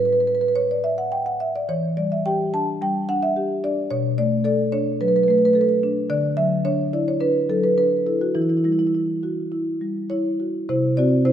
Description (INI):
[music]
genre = classical, contemporary piece for solo marimba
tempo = 101-111 BPM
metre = 4/4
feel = rubato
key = E dorian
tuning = A4 = 440 Hz
[part]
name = marimba with soft mallets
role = solo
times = 0.0-11.3 s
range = A2 to A5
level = -19 LUFS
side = equal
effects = none
[sound]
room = wet scoring stage reverb, RT60 1.7 s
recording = dark, warm production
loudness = -19 LUFS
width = side -10 dB against mid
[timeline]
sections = 0.0-10.7 A section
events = none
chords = 0.0 A9; 1.7 Em7; 3.9 Bm7; 6.1 Dadd9; 8.3 Emadd9; 10.7 Cadd9